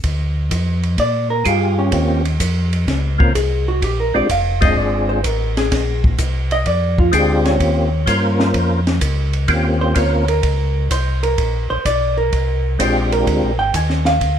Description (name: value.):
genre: soul jazz organ trio.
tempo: 127 BPM.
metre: 4/4.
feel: swing 69% on 8ths.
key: unclear.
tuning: A4 = 440 Hz.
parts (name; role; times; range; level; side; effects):
mellow tonewheel organ; bass; 0.0-14.4 s; F1 to Bb2; -18 LUFS; equal; chorus vibrato, slow rotary speaker.
compact cocktail drum kit; drums; 0.0-14.4 s; hi-hat, kick drum, ride cymbal, snare drum; -22 LUFS; equal; none.
vintage hollow-body jazz guitar; accompaniment; 1.0-14.4 s; Db4 to Ab5; -20 LUFS; right 1 dB; none.
percussive tonewheel organ; melody; 1.4-13.5 s; Ab3 to C5; -19 LUFS; left 1 dB; slow rotary speaker, chorus vibrato, plate reverb.
room: light reverb.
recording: none.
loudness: -15 LUFS.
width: side -9 dB against mid.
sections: 0.0-14.4 A section.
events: hollow-body jazz guitar solo 0.0-14.4.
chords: 0.0 Bb6; 1.9 Eb13; 3.8 Bb13; 7.6 Eb13; 11.4 Bb13.